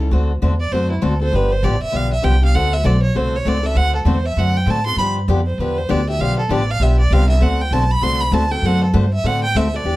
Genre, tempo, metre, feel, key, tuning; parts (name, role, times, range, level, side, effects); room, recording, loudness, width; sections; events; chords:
acoustic string swing (jazz manouche); 197 BPM; 4/4; swing 60% on 8ths; D mixolydian; A4 = 436 Hz
picked steel-string acoustic guitar; accompaniment; 0.0-10.0 s; D3 to A4; -22 LUFS; left 3 dB
upright bass; bass; 0.0-10.0 s; G1 to A2; -17 LUFS; equal
warm violin; melody; 0.6-10.0 s; E4 to C6; -21 LUFS; right 2 dB
light reverb; -15 LUFS; side -17 dB against mid
0.1-10.0 A section
violin solo 0.0-10.0
0.1 D7; 1.3 G7; 2.5 D7; 5.0 G7; 7.4 D7